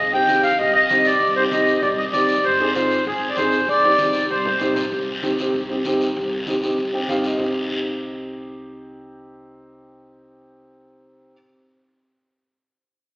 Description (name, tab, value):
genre	latin, cumbia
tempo	194 BPM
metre	4/4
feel	straight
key	C minor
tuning	A4 = 440 Hz
part	accordion	melody	0.0-4.7 s	Ab4 to G5	-17 LUFS	equal	none
part	upright bass	bass	0.0-11.3 s	Ab1 to G2	-38 LUFS	equal	none
part	warm upright piano	accompaniment	0.1-11.3 s	C4 to G5	-22 LUFS	equal	none
part	congas	percussion	0.3-7.5 s	none	-40 LUFS	equal	none
part	guiro	percussion	0.3-7.5 s	none	-30 LUFS	left 1 dB	none
room	wet concert hall reverb, RT60 2.2 s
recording	recorded in a church or concert hall, AM radio sound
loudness	-17 LUFS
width	side -26 dB against mid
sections	0.0-4.9 A section; 4.9-7.4 B section; 7.4-9.9 C section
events	drum fill 4.0-4.9; upright piano fill 6.8-7.4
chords	0.0 Cm; 2.4 Ab; 3.7 Cm